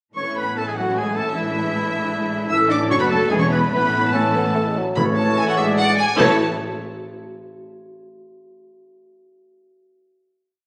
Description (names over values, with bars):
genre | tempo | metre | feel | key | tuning
quick classical-period movement for symphony orchestra | 141-156 BPM | 3/4 | straight | A major | A4 = 440 Hz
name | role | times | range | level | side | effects
rich chamber violin section | melody | 0.2-6.4 s | E5 to E6 | -29 LUFS | equal | none
clear clarinet | second line | 0.2-6.4 s | E4 to E5 | -30 LUFS | equal | none
mellow hollow silver concert flute | second line | 0.2-6.4 s | E5 to E6 | -28 LUFS | equal | none
warm oboe | second line | 0.2-6.4 s | E4 to E5 | -28 LUFS | equal | none
warm symphonic violin section | second line | 0.2-6.4 s | C#4 to C#5 | -32 LUFS | equal | none
rich chamber viola section | accompaniment | 0.2-6.4 s | E3 to E5 | -29 LUFS | equal | none
mellow French horn section | sustained chords | 0.2-6.4 s | E3 to E4 | -28 LUFS | equal | none
warm chamber cello section | bass | 0.2-6.4 s | E2 to A2 | -30 LUFS | equal | none
warm chamber double bass section | bass | 0.2-6.4 s | E1 to A1 | -32 LUFS | equal | none
mellow bassoon | accompaniment | 4.1-6.4 s | E3 to C#4 | -28 LUFS | equal | none
mellow trumpet section | stabs | 5.0-6.4 s | C#5 to D5 | -31 LUFS | equal | none
timpani | percussion | 5.0-6.4 s | A2 | -30 LUFS | equal | none
room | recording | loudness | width
wet scoring stage reverb, RT60 1.6 s | recorded on a phone in the room, studio ambience | -19 LUFS | mono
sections
0.2-5.0 A section; 5.0-6.2 coda; 6.2-7.5 final chord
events
none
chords
0.2 A; 1.4 E7/A; 2.5 A; 2.9 D/F#; 3.3 E7; 3.7 A; 5.6 E7/A; 6.2 A